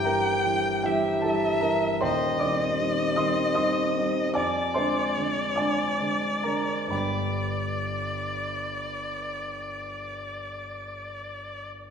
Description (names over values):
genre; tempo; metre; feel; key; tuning
classical, romantic duo for violin and grand piano; 42-53 BPM (dotted quarters); 12/8; rubato; unclear; A4 = 439 Hz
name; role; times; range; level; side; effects
warm violin; melody; 0.0-11.7 s; D5 to G5; -28 LUFS; left 1 dB; none
dark baby grand piano; accompaniment; 0.0-11.9 s; Eb1 to Eb6; -27 LUFS; equal; none
room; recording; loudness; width
wet scoring stage reverb, RT60 1.8 s; heard from further back in the room; -24 LUFS; side -7 dB against mid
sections
0.0-11.9 A section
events
none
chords
0.0 Edim/G; 2.0 Cm/Eb; 4.4 Dm7b5/F; 6.9 G